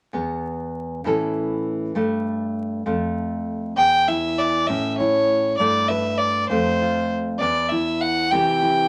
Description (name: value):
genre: acoustic folk duo or small band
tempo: 66 BPM (dotted quarters)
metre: 6/8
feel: straight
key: E minor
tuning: A4 = 440 Hz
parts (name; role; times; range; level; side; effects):
- nylon-string guitar; accompaniment; 0.1-8.9 s; E2 to B4; -25 LUFS; equal; none
- warm fiddle; melody; 3.8-8.9 s; C5 to G5; -22 LUFS; equal; none
room: moderate small room reverb, RT60 0.5 s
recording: vinyl crackle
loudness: -22 LUFS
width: mono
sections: 0.1-3.8 A section; 3.8-8.9 B section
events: none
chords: 0.1 E5; 1.0 A; 1.9 Gsus2; 2.9 F; 3.8 E5; 4.7 A; 5.6 Gadd9; 6.5 F; 7.4 E5; 8.3 C